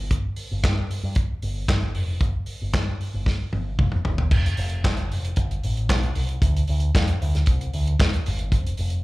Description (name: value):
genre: disco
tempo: 114 BPM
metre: 4/4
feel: straight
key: unclear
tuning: A4 = 440 Hz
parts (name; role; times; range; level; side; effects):
- picked electric bass with an envelope filter; bass; 0.0-9.0 s; F1 to G2; -24 LUFS; equal; none
- warm soul drum kit; drums; 0.1-9.0 s; crash cymbal, handclaps, hi-hat, kick drum, snare drum, toms; -23 LUFS; equal; none
room: little or no reverb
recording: live gig heard through the venue's PA, club reverb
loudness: -21 LUFS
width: side -20 dB against mid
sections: 0.0-4.3 A section; 4.3-9.0 B section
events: drum fill 3.3-4.3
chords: none